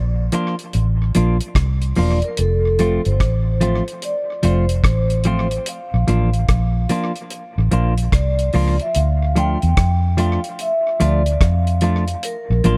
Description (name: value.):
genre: roots reggae.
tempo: 73 BPM.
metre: 4/4.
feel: swing 64% on 16ths.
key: unclear.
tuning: A4 = 440 Hz.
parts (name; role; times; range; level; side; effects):
vintage muted fingered electric bass; bass; 0.0-12.8 s; E1 to F2; -20 LUFS; equal; none.
clean electric guitar; accompaniment; 0.3-12.8 s; F3 to F4; -24 LUFS; equal; dub echo.
deep reggae drum kit; drums; 0.3-12.8 s; hi-hat, kick drum, rim click; -24 LUFS; equal; tape echo.
vibraphone with medium mallets; melody; 2.0-12.8 s; A4 to G5; -26 LUFS; equal; dub echo.
room: little or no reverb.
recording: none.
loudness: -18 LUFS.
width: mono.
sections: 0.0-8.9 A section; 8.9-12.8 B section.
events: none.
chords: 0.0 Bb; 2.4 F; 5.7 Bb; 8.9 Dm; 12.2 Bb.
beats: 0.74 1.56 | 2.38 3.20 4.02 4.84 | 5.66 6.49 7.31 8.13 | 8.95 9.77 10.59 11.41 | 12.23.